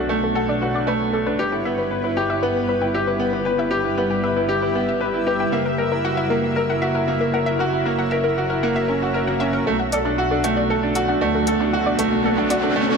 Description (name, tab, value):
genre	piano and strings electronica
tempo	116 BPM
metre	4/4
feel	straight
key	unclear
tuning	A4 = 440 Hz
part	granular cloud pad	sustained chords	0.0-13.0 s	G3 to A#5	-27 LUFS	left 1 dB	built-in reverb
part	analog pluck	arpeggios	0.0-12.9 s	A4 to D6	-27 LUFS	left 3 dB	chorus, ping-pong delay
part	bright baby grand piano	riff	0.0-13.0 s	A3 to B4	-20 LUFS	right 1 dB	ping-pong delay
part	warm chamber double bass section	bass	0.0-12.5 s	F#1 to D2	-28 LUFS	equal	none
part	riser	sound effects	11.2-13.0 s	none	-28 LUFS	left 1 dB	none
part	electronic hi-hat	drums	9.9-12.6 s	none	-30 LUFS	left 1 dB	low-pass filter on cymbals, low-pass filter on hats
room	moderate lush hall reverb, RT60 2.1 s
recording	none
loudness	-18 LUFS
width	side -5 dB against mid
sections	0.0-9.7 A section; 9.7-13.0 B section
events	fade-in on ambient pad 0.0-9.7; filter sweep on synth arpeggio sound 0.0-9.7; build-up 9.7-13.0; riser 11.2-13.0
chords	0.0 Bm7; 1.4 G6; 5.5 F#7; 9.7 Bm7